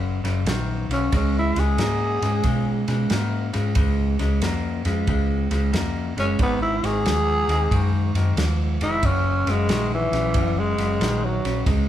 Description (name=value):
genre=electric blues shuffle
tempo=91 BPM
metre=4/4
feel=swing 66% on 8ths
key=Db mixolydian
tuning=A4 = 440 Hz
part: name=electric guitar through a small old amp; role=riff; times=0.0-11.9 s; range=Gb2 to Bb3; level=-26 LUFS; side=equal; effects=none
part: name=hollow-body short-scale fingered electric bass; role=bass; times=0.0-11.9 s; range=F1 to Cb3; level=-24 LUFS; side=equal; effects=none
part: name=warm soul drum kit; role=drums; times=0.2-11.9 s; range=kick drum, ride cymbal, snare drum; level=-27 LUFS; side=equal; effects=none
part: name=growling tenor saxophone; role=melody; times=0.9-11.7 s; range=Fb3 to Ab4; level=-24 LUFS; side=equal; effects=none
room=moderate large studio reverb, RT60 1.1 s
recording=band playing live in one room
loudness=-20 LUFS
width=side -11 dB against mid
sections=0.0-11.9 A section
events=tenor saxophone solo 0.0-11.9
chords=0.0 Gb; 1.1 Db; 6.4 Ab5; 9.0 Gb7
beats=0.47 | 1.12 1.78 2.44 3.10 | 3.76 4.42 5.07 5.73 | 6.39 7.05 7.71 8.37 | 9.03 9.68 10.34 11.00 | 11.66